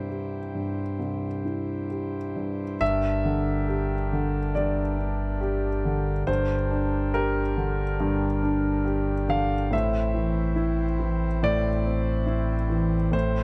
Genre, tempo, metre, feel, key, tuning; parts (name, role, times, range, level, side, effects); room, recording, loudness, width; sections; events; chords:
neoclassical piano and strings; 70 BPM; 4/4; rubato; G dorian; A4 = 441 Hz
warm upright piano; accompaniment; 0.0-13.4 s; C2 to F5; -28 LUFS; equal
pedal harmonium; sustained chords; 0.0-13.4 s; C4 to C5; -38 LUFS; equal
pure sine sub bass; bass; 2.8-13.4 s; G1 to A1; -31 LUFS; equal
little or no reverb; close, detailed microphones; -26 LUFS; mono
0.0-2.8 A section; 2.8-13.4 A section
0.0 C; 2.8 Gm; 9.7 Am